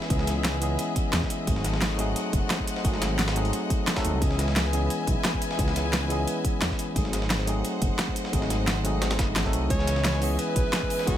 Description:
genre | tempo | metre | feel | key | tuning
liquid drum and bass | 175 BPM | 4/4 | straight | C# minor | A4 = 441 Hz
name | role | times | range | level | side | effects
bell-like tine electric piano | accompaniment | 0.0-11.2 s | E3 to A4 | -30 LUFS | equal | digital delay
clear symphonic string section | sustained chords | 0.0-11.2 s | A3 to G#5 | -33 LUFS | left 3 dB | sidechain pumping
dusty soul sampler-style drum kit | drums | 0.0-11.2 s | hi-hat, snare drum | -34 LUFS | equal | high-pass filter on hats, high-pass filter on snare, high-pass filter on room
dark detuned saw bass | bass | 0.1-11.2 s | F#1 to E2 | -28 LUFS | equal | none
electronic kick drum | drums | 0.1-11.1 s | none | -28 LUFS | equal | none
pop drum kit | drums | 0.1-11.1 s | hi-hat, shaker, snare drum | -29 LUFS | right 1 dB | none
clear alto saxophone | melody | 9.7-11.2 s | F#4 to C#5 | -30 LUFS | right 2 dB | none
room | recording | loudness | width
little or no reverb | none | -23 LUFS | side -11 dB against mid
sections
0.0-11.2 A section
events
none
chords
0.0 C#m7; 1.5 G#7b9; 4.2 C#m7; 7.0 G#7b9; 9.7 C#m7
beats
| 0.10 0.45 0.79 1.13 | 1.47 1.82 2.16 2.50 | 2.85 3.19 3.53 3.87 | 4.22 4.56 4.90 5.25 | 5.59 5.93 6.27 6.62 | 6.96 7.30 7.65 7.99 | 8.33 8.67 9.02 9.36 | 9.70 10.05 10.39 10.73 | 11.07

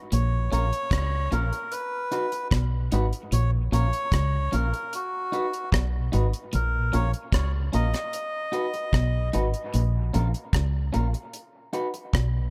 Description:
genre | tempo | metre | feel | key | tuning
dub reggae | 75 BPM | 4/4 | straight | Bb phrygian | A4 = 439 Hz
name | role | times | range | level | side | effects
melodica | melody | 0.1-9.3 s | F#4 to Eb5 | -33 LUFS | equal | dub echo
electric guitar at the edge of break-up | riff | 0.1-12.4 s | Ab2 to Db3 | -34 LUFS | equal | dub echo
deep dub fingered electric bass | bass | 0.1-12.5 s | Ab1 to Db2 | -27 LUFS | equal | none
deep reggae drum kit | drums | 0.1-12.3 s | hi-hat, kick drum, rim click | -30 LUFS | equal | none
electric guitar at the edge of break-up | accompaniment | 0.5-12.0 s | Db4 to B4 | -36 LUFS | equal | dub echo
room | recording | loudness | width
light reverb | none | -26 LUFS | mono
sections
0.0-12.5 A section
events
none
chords
0.1 Bbm; 1.7 B; 3.3 Bbm; 4.9 B; 6.5 Bbm; 8.1 B; 9.7 Bbm; 11.3 B5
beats
| 0.11 0.91 1.72 2.52 | 3.32 4.12 4.92 5.72 | 6.53 7.33 8.13 8.93 | 9.73 10.54 11.34 12.14

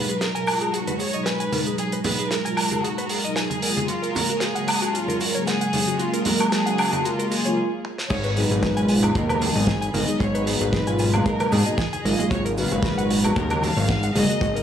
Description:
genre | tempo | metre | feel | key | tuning
nu-disco, nu disco | 114 BPM | 4/4 | swing 54% on 16ths | G# dorian | A4 = 438 Hz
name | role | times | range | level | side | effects
clear studio violin section | melody | 0.0-14.6 s | E#4 to E#5 | -28 LUFS | equal | analog delay
mellow synth brass | accompaniment | 0.0-14.6 s | A#2 to E#5 | -26 LUFS | equal | chorus, sidechain pumping
string machine, full ensemble | sustained chords | 0.0-14.6 s | F#3 to B5 | -33 LUFS | right 2 dB | ensemble chorus, sidechain pumping
direct-recorded clean electric guitar | riff | 0.1-14.6 s | F#4 to G#5 | -31 LUFS | left 2 dB | wide subtle chorus, low-pass filter
damped 70s drum kit | drums | 0.1-14.6 s | crash cymbal, hi-hat, snare drum, toms, woodblock | -26 LUFS | right 1 dB | high-pass filter on hats, studio reverb, high-pass filter on toms, high-pass filter on cymbals, high-pass filter on snare, high-pass filter on perc, high-pass filter on room
cabasa and congas | percussion | 0.1-14.6 s | none | -31 LUFS | right 2 dB | none
fat analog bass | bass | 8.1-14.6 s | G#1 to G#2 | -22 LUFS | left 1 dB | sidechain pumping
kick drum | drums | 8.1-14.5 s | none | -25 LUFS | equal | studio reverb
room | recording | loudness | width
moderate plate reverb, RT60 1.6 s, small room ambience | dry, gritty hardware recording, transformer saturation | -20 LUFS | side -9 dB against mid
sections
0.0-8.1 A section; 8.1-14.6 B section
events
build-up 0.0-8.1; filter sweep on analog polysynth 0.0-8.1; stop 7.6-8.1; drum fill 7.8; drop 8.1-14.6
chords
0.0 G#m9; 3.9 F#maj9; 8.1 G#m9; 12.3 F#maj9/G#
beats
0.21 0.73 1.26 | 1.79 2.31 2.84 3.37 | 3.89 4.42 4.94 5.47 | 6.00 6.52 7.05 7.58 | 8.10 8.63 9.15 9.68 | 10.21 10.73 11.26 11.79 | 12.31 12.84 13.37 13.89 | 14.42

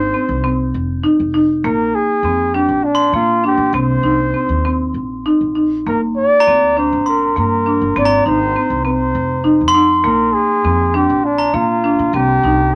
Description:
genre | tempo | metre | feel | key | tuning
contemporary instrumental, chamber music in an uneven meter | 200 BPM (eighths) | 7/8 | straight | C minor | A4 = 435 Hz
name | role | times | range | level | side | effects
mellow flugelhorn | melody | 0.0-12.8 s | D4 to D5 | -19 LUFS | equal | none
marimba with medium hard mallets | arpeggios | 0.0-12.7 s | Bb3 to Eb4 | -19 LUFS | equal | none
upright bass | bass | 0.0-12.7 s | F1 to Bb2 | -24 LUFS | equal | none
glockenspiel with brass mallets | texture | 2.9-12.4 s | Bb5 to C6 | -21 LUFS | equal | none
room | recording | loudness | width
moderate booth ambience, RT60 0.2 s | none | -15 LUFS | mono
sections
0.0-12.8 A section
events
none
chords
0.0 Ab (rootless); 1.6 Bbadd9; 3.7 Cm7; 5.9 Gm; 8.0 Ab; 10.0 Bbadd9; 12.1 Cm7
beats
0.14 0.44 0.74 1.04 1.34 | 1.64 1.94 2.24 2.54 2.84 3.13 3.44 | 3.73 4.04 4.34 4.64 4.95 5.25 5.56 | 5.87 6.17 6.47 6.77 7.07 7.37 7.67 | 7.96 8.26 8.56 8.86 9.15 9.45 9.75 | 10.05 10.34 10.64 10.94 11.24 11.54 11.84 | 12.14 12.44 12.74

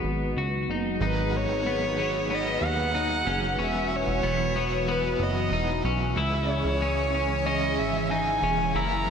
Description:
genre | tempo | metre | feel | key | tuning
dream pop | 93 BPM | 4/4 | straight | G# minor | A4 = 439 Hz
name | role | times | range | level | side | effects
dark erhu | melody | 0.0-9.1 s | B4 to A#5 | -28 LUFS | equal | ping-pong delay
phased analog pad | sustained chords | 0.0-9.1 s | D#3 to G#5 | -31 LUFS | right 1 dB | phaser, chorus
clean electric guitar | arpeggios | 0.0-9.1 s | B3 to F#4 | -30 LUFS | left 4 dB | analog chorus, ping-pong delay
plucky analog bass | bass | 0.0-9.1 s | E1 to D#2 | -30 LUFS | equal | none
crunchy overdriven guitar | accompaniment | 1.0-9.1 s | F#2 to E4 | -34 LUFS | right 4 dB | tremolo, analog chorus
room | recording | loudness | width
moderate plate reverb, RT60 3.2 s | dreamy mix soaked in reverb | -24 LUFS | side -7 dB against mid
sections
0.0-1.0 A section; 1.0-9.1 B section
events
none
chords
0.0 G#m7; 3.6 Esus2; 6.2 C#m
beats
0.37 | 1.01 1.66 2.31 2.95 | 3.60 4.24 4.89 5.53 | 6.18 6.82 7.47 8.11 | 8.76

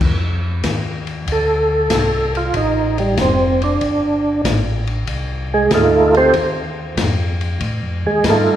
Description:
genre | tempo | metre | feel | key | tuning
soul jazz organ trio | 95 BPM | 4/4 | swing 69% on 8ths | F mixolydian | A4 = 440 Hz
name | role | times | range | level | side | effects
mellow tonewheel organ | bass | 0.0-8.6 s | F1 to A2 | -22 LUFS | equal | chorus vibrato, slow rotary speaker
open jazz drum kit | drums | 0.0-8.4 s | crash cymbal, hi-hat, kick drum, ride cymbal, snare drum | -22 LUFS | left 2 dB | none
overdriven tonewheel organ | melody | 1.3-8.6 s | G3 to C5 | -15 LUFS | right 2 dB | chorus vibrato, slow rotary speaker
room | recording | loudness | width
wet recital hall reverb, RT60 1.7 s | recorded in a church or concert hall | -15 LUFS | side -11 dB against mid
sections
0.0-8.6 A section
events
tonewheel organ solo 0.0-8.6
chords
0.0 F9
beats
| 0.01 0.65 1.28 1.91 | 2.54 3.18 3.81 4.44 | 5.08 5.71 6.34 6.97 | 7.61 8.24

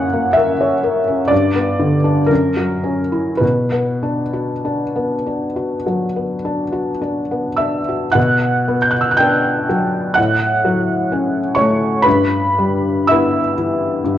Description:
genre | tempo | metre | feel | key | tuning
classical, romantic nocturne for solo piano | 48-66 BPM | 4/4 | rubato | B minor | A4 = 439 Hz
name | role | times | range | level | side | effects
felt-muted upright piano | solo | 0.0-14.2 s | F#2 to G6 | -14 LUFS | equal | none
room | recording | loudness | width
wet large studio reverb, RT60 1.2 s | worn, warbling old tape, cassette tape, warbly pitch drift | -14 LUFS | side -11 dB against mid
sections
0.0-8.2 A section; 8.2-14.2 A section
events
none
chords
0.0 F#; 1.3 G; 2.3 F#7; 3.4 Bm; 10.2 F#m/A; 12.1 Em/G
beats
0.37 1.31 2.30 | 3.42 4.66 5.88 7.03 | 8.16 9.19 10.17 11.11 | 12.06 13.10 14.04

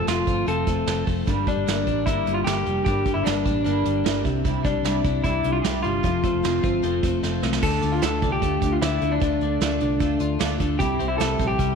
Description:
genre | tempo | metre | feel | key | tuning
jangly indie pop | 151 BPM | 4/4 | straight | unclear | A4 = 439 Hz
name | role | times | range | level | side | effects
electric guitar through a small old amp | melody | 0.0-11.8 s | D4 to A4 | -25 LUFS | left 1 dB | none
picked twelve-string acoustic guitar | accompaniment | 0.0-11.8 s | G2 to F4 | -30 LUFS | right 9 dB | none
twelve-string electric guitar | arpeggios | 0.0-11.8 s | G2 to F4 | -27 LUFS | left 10 dB | none
vintage muted fingered electric bass | bass | 0.0-11.8 s | F1 to D2 | -28 LUFS | equal | none
soft brush drum kit | drums | 0.1-11.7 s | crash cymbal, hi-hat, kick drum, snare drum | -27 LUFS | right 4 dB | none
room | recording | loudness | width
moderate echo chamber reverb, RT60 1.4 s, small room ambience | 1960s-style stereo with parts hard left and right | -20 LUFS | side -6 dB against mid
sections
0.0-7.6 A section; 7.6-11.8 B section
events
drum fill 7.2-7.6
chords
0.0 F; 1.3 Gm; 4.3 Cadd9; 6.0 F; 7.6 Dm; 10.8 C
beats
0.08 0.47 0.87 | 1.27 1.67 2.06 2.46 | 2.86 3.26 3.65 4.05 | 4.45 4.85 5.25 5.64 | 6.04 6.44 6.83 7.23 | 7.63 8.03 8.42 8.82 | 9.22 9.62 10.01 10.41 | 10.81 11.20 11.60

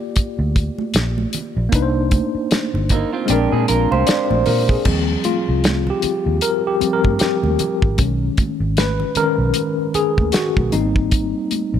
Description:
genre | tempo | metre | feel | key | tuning
lush 1970s-style soul | 77 BPM | 4/4 | swing 58% on 16ths | Eb major | A4 = 441 Hz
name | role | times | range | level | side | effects
mellow tine electric piano | accompaniment | 0.0-11.8 s | D#3 to F5 | -20 LUFS | left 2 dB | medium stereo tremolo
vintage muted fingered electric bass | bass | 0.2-11.8 s | G1 to Bb2 | -20 LUFS | equal | none
damped 70s drum kit | drums | 0.2-11.7 s | crash cymbal, hi-hat, kick drum, snare drum | -19 LUFS | equal | none
congas | percussion | 0.2-11.7 s | none | -28 LUFS | right 6 dB | none
electric guitar through a small old amp | riff | 2.9-4.8 s | Bb3 to C5 | -21 LUFS | right 8 dB | none
room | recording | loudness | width
studio reverb | none | -16 LUFS | side -9 dB against mid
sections
0.0-4.9 A section; 4.9-11.8 B section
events
tine electric piano solo 4.9-11.8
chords
0.0 Gm7; 1.7 Cm9; 3.3 Bb9; 4.9 Eb69; 8.0 B69; 10.7 Abmaj9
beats
0.17 0.95 | 1.73 2.51 3.29 4.08 | 4.86 5.64 6.42 7.21 | 7.99 8.77 9.55 10.34 | 11.12

